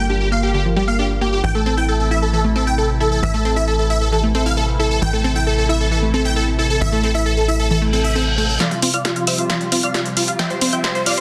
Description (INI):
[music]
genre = uplifting trance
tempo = 134 BPM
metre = 4/4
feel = straight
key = unclear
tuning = A4 = 436 Hz
[part]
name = supersaw chords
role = melody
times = 0.0-11.2 s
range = F4 to G5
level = -23 LUFS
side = equal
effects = analog chorus, low-pass filter, delay
[part]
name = lush unison pad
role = sustained chords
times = 0.0-11.2 s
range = C3 to F4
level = -29 LUFS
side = equal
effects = chorus, phaser
[part]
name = unison pluck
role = arpeggios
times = 0.0-11.1 s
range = D3 to A4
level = -26 LUFS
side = equal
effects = delay
[part]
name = tight sequencer bass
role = bass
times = 0.0-8.6 s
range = G1 to A1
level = -22 LUFS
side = equal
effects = none
[part]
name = reverse cymbal and riser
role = sound effects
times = 7.9-11.2 s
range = none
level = -29 LUFS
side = equal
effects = none
[part]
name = analog pluck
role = second line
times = 8.6-11.2 s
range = F5 to G6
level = -29 LUFS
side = equal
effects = analog chorus, delay
[part]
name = punchy analog drum machine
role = drums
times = 8.6-11.2 s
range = hi-hat, snare drum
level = -22 LUFS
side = equal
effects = overdrive, high-pass filter on snare, low-pass filter on snare, high-pass filter on hats, low-pass filter on hats
[sound]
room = light reverb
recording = dense, heavily limited modern master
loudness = -18 LUFS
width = mono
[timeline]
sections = 0.0-8.6 A section; 8.6-11.2 B section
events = reverse cymbal 7.9-8.6; build-up 8.6-11.2; drum fill 8.6-11.2; filter sweep on supersaw synth 8.6-11.2; filter sweep on synth arpeggio sound 8.6-11.2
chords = 0.0 Gm7; 1.4 Am; 8.6 Fsus2